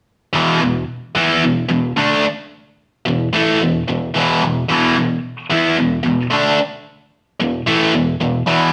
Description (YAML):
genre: rock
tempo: 111 BPM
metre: 4/4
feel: straight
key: unclear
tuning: A4 = 439 Hz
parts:
  - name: tight distorted guitar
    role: riff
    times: 0.3-8.7 s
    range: E2 to E4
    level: -19 LUFS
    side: equal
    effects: distortion
  - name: biting overdriven guitar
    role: riff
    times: 0.4-8.7 s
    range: E2 to E4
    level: -20 LUFS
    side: equal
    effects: phaser
room: wet studio reverb, RT60 0.8 s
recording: none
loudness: -17 LUFS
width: mono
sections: 0.3-8.7 A section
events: none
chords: 0.3 E5